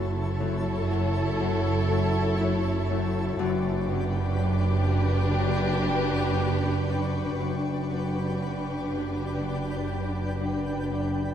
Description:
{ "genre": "cinematic", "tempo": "60 BPM", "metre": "4/4", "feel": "straight", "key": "unclear", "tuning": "A4 = 440 Hz", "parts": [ { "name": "rich chamber violin section", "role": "melody", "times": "0.0-11.2 s", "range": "B4 to C#5", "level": "-38 LUFS", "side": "left 5 dB", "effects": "none" }, { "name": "rich chamber violin section", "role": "second line", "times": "0.0-11.2 s", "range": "G4 to A4", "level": "-34 LUFS", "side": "equal", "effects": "none" }, { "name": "rich chamber viola section", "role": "accompaniment", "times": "0.0-11.2 s", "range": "D4 to E4", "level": "-35 LUFS", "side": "right 1 dB", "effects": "none" }, { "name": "twinkling granular texture", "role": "sustained chords", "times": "0.0-11.3 s", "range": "D4 to A5", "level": "-33 LUFS", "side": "left 1 dB", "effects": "built-in reverb" }, { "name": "Celtic harp", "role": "riff", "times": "0.0-11.3 s", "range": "F#2 to F#3", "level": "-32 LUFS", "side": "left 8 dB", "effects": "none" }, { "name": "rich chamber double bass section", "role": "bass", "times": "0.0-11.2 s", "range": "F#1", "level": "-31 LUFS", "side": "right 2 dB", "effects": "none" }, { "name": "warm chamber cello section", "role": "bass", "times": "0.0-11.2 s", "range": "F#2", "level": "-29 LUFS", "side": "right 3 dB", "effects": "none" }, { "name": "rich chamber violin section", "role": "texture", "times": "0.0-10.9 s", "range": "A5 to D6", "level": "-44 LUFS", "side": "left 6 dB", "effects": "none" } ], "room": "moderate scoring stage reverb, RT60 1.9 s", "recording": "dark, warm production", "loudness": "-24 LUFS", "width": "side -9 dB against mid", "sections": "0.0-11.3 A section", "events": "none", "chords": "0.0 F#m7; 3.4 G/F#" }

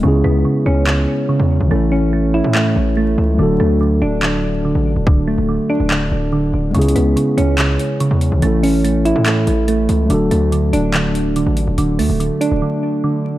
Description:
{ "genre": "hip hop, trap", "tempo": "143 BPM", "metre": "4/4", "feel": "half-time", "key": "unclear", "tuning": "A4 = 441 Hz", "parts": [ { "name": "mellow tine electric piano", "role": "accompaniment", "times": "0.0-13.4 s", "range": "E3 to A4", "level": "-20 LUFS", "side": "left 2 dB", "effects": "slow stereo tremolo, low-pass filter" }, { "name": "soft electric-piano-like synth keys", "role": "arpeggios", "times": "0.0-13.4 s", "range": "C#3 to E4", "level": "-17 LUFS", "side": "right 2 dB", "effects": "chorus, low-pass filter, tape echo" }, { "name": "distorted 808-style bass", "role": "bass", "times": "0.0-12.6 s", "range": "D1 to A2", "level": "-18 LUFS", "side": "equal", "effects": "distortion" }, { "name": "trap drum kit", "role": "drums", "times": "0.9-12.5 s", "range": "handclaps, hi-hat, kick drum", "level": "-21 LUFS", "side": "equal", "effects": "overdrive" } ], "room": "light reverb, digital ambience", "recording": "dark, warm production, vinyl crackle", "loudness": "-13 LUFS", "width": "side -15 dB against mid", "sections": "0.0-13.4 A section", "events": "break 0.0-6.7, 12.6-13.4", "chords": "0.0 C#m7; 1.7 A; 3.4 D; 6.7 C#m7; 8.4 A; 10.1 D" }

